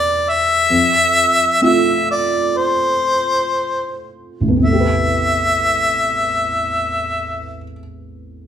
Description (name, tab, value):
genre	acoustic folk-pop ballad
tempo	56-69 BPM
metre	4/4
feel	straight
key	A minor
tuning	A4 = 440 Hz
part	warm harmonica	melody	0.0-7.6 s	C5 to E5	-15 LUFS	left 1 dB	none
part	felt-muted upright piano	accompaniment	0.0-8.5 s	A1 to B4	-20 LUFS	right 2 dB	none
room	moderate large studio reverb, RT60 1.2 s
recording	band playing live in one room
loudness	-14 LUFS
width	side -9 dB against mid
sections	0.0-4.6 A section; 4.6-8.5 B section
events	slowing down 0.0-4.6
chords	0.0 Am7/E; 0.7 F; 4.6 Am9